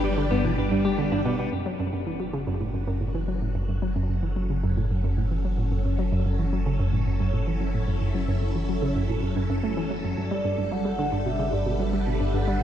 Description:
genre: ambient, sequencer-driven space music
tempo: 111 BPM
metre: 4/4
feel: straight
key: F# phrygian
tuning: A4 = 439 Hz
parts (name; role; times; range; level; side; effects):
- phased string machine; sustained chords; 0.0-12.6 s; F#3 to B4; -31 LUFS; equal; ensemble chorus, phaser
- semi-hollow electric guitar; arpeggios; 0.0-1.5 s; E3 to G4; -31 LUFS; left 2 dB; auto-pan, ping-pong delay
- hollow square pluck; riff; 0.0-12.6 s; F#2 to A3; -26 LUFS; right 1 dB; chorus, phaser, ping-pong delay
- warm sub bass; bass; 0.0-12.6 s; F#1 to G1; -29 LUFS; equal; none
- mellow horn-like synth lead; melody; 10.2-12.6 s; D5 to F#5; -30 LUFS; right 1 dB; chorus, ping-pong delay
room: moderate huge ambient reverb, RT60 7.6 s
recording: in a vast, echoing space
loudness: -23 LUFS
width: side -10 dB against mid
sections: 0.0-1.5 A section; 1.5-12.6 B section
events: fade-in on string machine 1.5-12.6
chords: 0.0 G; 1.5 F#m; 10.2 G

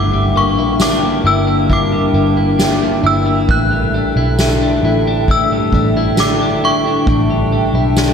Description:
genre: dream pop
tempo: 67 BPM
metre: 4/4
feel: straight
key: unclear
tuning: A4 = 440 Hz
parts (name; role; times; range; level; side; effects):
- synth chime; melody; 0.0-8.1 s; C#6 to F#6; -19 LUFS; left 1 dB; ensemble chorus, phaser, slapback echo, tape echo
- warbly tape-like pad; sustained chords; 0.0-8.1 s; D4 to G5; -17 LUFS; left 1 dB; chorus, built-in reverb
- clean electric guitar; arpeggios; 0.0-8.1 s; G2 to E4; -19 LUFS; left 2 dB; wide subtle chorus, tape echo
- vintage muted picked electric bass; bass; 0.0-8.1 s; G1 to B1; -18 LUFS; right 1 dB; none
- soft-mallet drum kit; drums; 0.8-8.1 s; kick drum, ride cymbal, snare drum, tambourine; -20 LUFS; equal; none
room: wet concert hall reverb, RT60 2.3 s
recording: big arena sound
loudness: -12 LUFS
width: side -7 dB against mid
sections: 0.0-8.1 A section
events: none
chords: 0.0 Gm6; 3.5 A7sus4

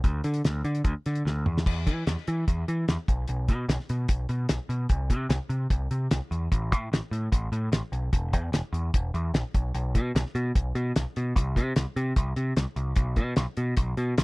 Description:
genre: indie rock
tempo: 148 BPM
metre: 4/4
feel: straight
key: unclear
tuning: A4 = 440 Hz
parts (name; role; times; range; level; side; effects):
- growling picked electric bass; bass; 0.0-14.2 s; E1 to E3; -27 LUFS; equal; overdrive
- cloth-damped thuddy drum kit; drums; 0.0-14.2 s; crash cymbal, hi-hat, kick drum, snare drum, toms; -25 LUFS; equal; none
room: little or no reverb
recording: dry, close 1970s-style studio recording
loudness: -25 LUFS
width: side -26 dB against mid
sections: 0.0-1.7 A section; 1.7-14.2 B section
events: drum fill 1.3-1.7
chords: none

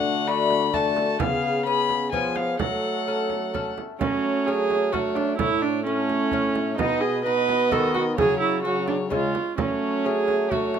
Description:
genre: classical, renaissance-style consort dance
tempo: 129 BPM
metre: 3/4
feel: straight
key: F# minor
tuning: A4 = 439 Hz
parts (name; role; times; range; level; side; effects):
- dark violin; melody; 0.0-10.8 s; C#5 to B5; -28 LUFS; left 6 dB; none
- warm viola; second line; 0.0-10.8 s; C#4 to B4; -25 LUFS; right 5 dB; none
- clear trombone; accompaniment; 0.0-10.8 s; F#3 to B3; -30 LUFS; left 2 dB; none
- lute; accompaniment; 0.0-10.8 s; A2 to A4; -31 LUFS; left 7 dB; none
- dark bassoon; bass; 0.0-10.8 s; A2 to F#3; -30 LUFS; right 2 dB; none
- frame drum; percussion; 0.5-10.8 s; none; -31 LUFS; right 6 dB; none
room: light reverb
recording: close, detailed microphones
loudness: -21 LUFS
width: side -8 dB against mid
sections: 0.0-4.0 A section; 4.0-10.8 A section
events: none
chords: 0.0 D; 1.2 C#7; 2.6 F#m; 5.4 A; 6.8 B; 8.2 C#sus4; 9.1 C#; 9.6 F#m

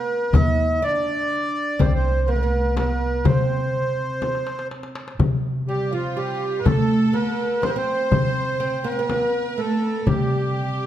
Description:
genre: Arabic maqam ensemble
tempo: 123 BPM (eighths)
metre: 10/8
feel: straight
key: C maqam rast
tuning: A4 = 440 Hz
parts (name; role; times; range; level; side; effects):
- accordion; melody; 0.0-10.9 s; F4 to E5-50c; -24 LUFS; right 1 dB; light tremolo tuning
- oud; second line; 0.0-10.9 s; F3 to E4-50c; -26 LUFS; right 3 dB; none
- upright bass; bass; 0.0-10.9 s; C2 to C3; -24 LUFS; equal; none
- darbuka; percussion; 0.3-10.7 s; none; -26 LUFS; left 3 dB; none
- frame drum; percussion; 0.3-10.3 s; none; -27 LUFS; left 4 dB; none
- bright studio violin section; second line; 5.7-10.9 s; F4 to C5; -34 LUFS; left 3 dB; none
room: moderate recital hall reverb, RT60 1.7 s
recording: dark, warm production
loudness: -19 LUFS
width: side -11 dB against mid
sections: 0.0-5.2 A section; 5.2-10.9 B section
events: drum fill 4.2-5.2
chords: none

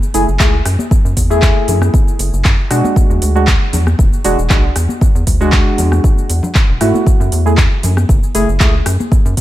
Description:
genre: deep house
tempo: 117 BPM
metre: 4/4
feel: swing 53% on 16ths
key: F# minor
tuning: A4 = 442 Hz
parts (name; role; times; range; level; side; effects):
- house drum kit; drums; 0.0-9.4 s; handclaps, hi-hat, rim click, shaker; -20 LUFS; equal; studio reverb
- deep mellow chord stab; stabs; 0.1-8.7 s; G#3 to G#4; -17 LUFS; equal; chorus, sidechain pumping, tape echo
- rubbery square bass; bass; 0.1-9.4 s; E1 to B2; -15 LUFS; equal; tube saturation, sidechain pumping
- electronic kick drum; drums; 0.4-9.4 s; none; -12 LUFS; equal; studio reverb
- congas; percussion; 0.8-9.1 s; none; -24 LUFS; left 2 dB; none
room: little or no reverb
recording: none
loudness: -10 LUFS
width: side -14 dB against mid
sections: 0.0-9.4 A section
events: none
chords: 0.0 F#m7; 3.0 E9; 7.1 F#m7

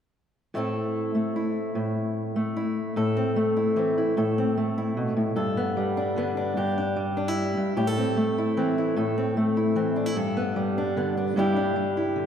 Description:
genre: folk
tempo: 150 BPM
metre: 3/4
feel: straight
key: unclear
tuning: A4 = 439 Hz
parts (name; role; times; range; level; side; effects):
- fingerpicked steel-string acoustic guitar; solo; 0.5-12.3 s; G2 to A4; -23 LUFS; equal; none
room: wet church reverb, RT60 2.6 s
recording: recorded in a church or concert hall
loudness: -23 LUFS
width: side -8 dB against mid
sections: 0.5-3.0 A section; 3.0-12.3 B section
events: none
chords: 0.5 Am; 5.4 Gadd9; 6.6 Em7/G; 7.8 Am; 10.2 Gadd9; 11.4 Em7/G

